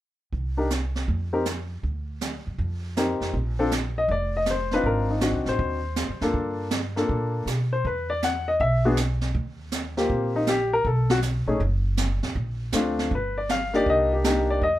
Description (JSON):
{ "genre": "jazz piano trio", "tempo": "160 BPM", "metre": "4/4", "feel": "swing 66% on 8ths", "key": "Bb major", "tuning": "A4 = 440 Hz", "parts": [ { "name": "upright bass", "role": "bass", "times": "0.3-14.8 s", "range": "F1 to Cb3", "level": "-27 LUFS", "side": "equal", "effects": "none" }, { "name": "jazz brush drum kit", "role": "drums", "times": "0.3-14.8 s", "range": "brushed snare drum, hi-hat, kick drum, snare drum", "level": "-30 LUFS", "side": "right 3 dB", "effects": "none" }, { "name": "warm upright piano", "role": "melody", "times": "0.6-14.8 s", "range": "A3 to F#5", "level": "-24 LUFS", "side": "left 2 dB", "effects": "none" } ], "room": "light reverb", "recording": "none", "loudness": "-22 LUFS", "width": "side -14 dB against mid", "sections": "0.3-3.3 A section; 3.3-14.8 B section", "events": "none", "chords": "0.3 N.C.; 1.8 D; 2.6 F9sus4; 3.3 Bbadd9; 4.8 Ab7#11; 6.3 Gm9; 7.8 Esus2; 9.3 Eb69; 10.9 B7(no3); 12.4 Bbmaj9; 13.1 G5; 13.9 Cm7" }